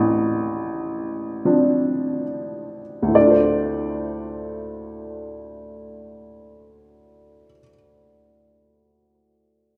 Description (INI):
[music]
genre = classical, lyrical solo piano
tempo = 33-43 BPM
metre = 4/4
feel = rubato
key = D minor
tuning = A4 = 440 Hz
[part]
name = warm upright piano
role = solo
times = 0.0-9.8 s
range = A1 to F5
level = -22 LUFS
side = equal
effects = none
[sound]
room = wet recital hall reverb, RT60 1.8 s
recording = recorded in a church or concert hall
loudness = -22 LUFS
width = mono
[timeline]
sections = 0.0-3.2 A section; 3.2-9.8 B section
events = slowing down 0.0-3.2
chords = 0.0 Dm7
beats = 1.44 | 3.15 4.96 6.71 8.44